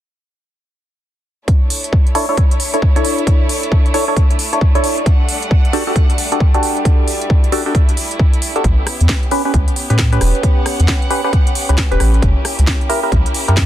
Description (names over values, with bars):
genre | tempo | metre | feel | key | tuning
UK garage, two-step garage | 134 BPM | 4/4 | swing 62% on 16ths | unclear | A4 = 442 Hz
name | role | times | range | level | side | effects
muted studio violin section | sustained chords | 1.5-13.7 s | G3 to F#5 | -25 LUFS | equal | sidechain pumping
electronic kick drum | drums | 1.5-13.7 s | none | -13 LUFS | equal | none
house drum kit | drums | 1.5-13.7 s | hi-hat, rim click, snare drum | -21 LUFS | right 1 dB | none
percussive organ stab | stabs | 2.1-13.6 s | C#4 to C#5 | -19 LUFS | equal | chorus, phaser, vintage 12-bit sampler grit, digital delay
soft dub sub bass | bass | 8.6-13.7 s | E1 to A2 | -13 LUFS | equal | sidechain pumping
room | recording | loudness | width
light reverb | dense, heavily limited modern master | -12 LUFS | side -12 dB against mid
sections
1.5-13.7 A section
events
none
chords
1.5 Aadd11; 5.1 Em11; 8.6 A9; 12.2 F#7b9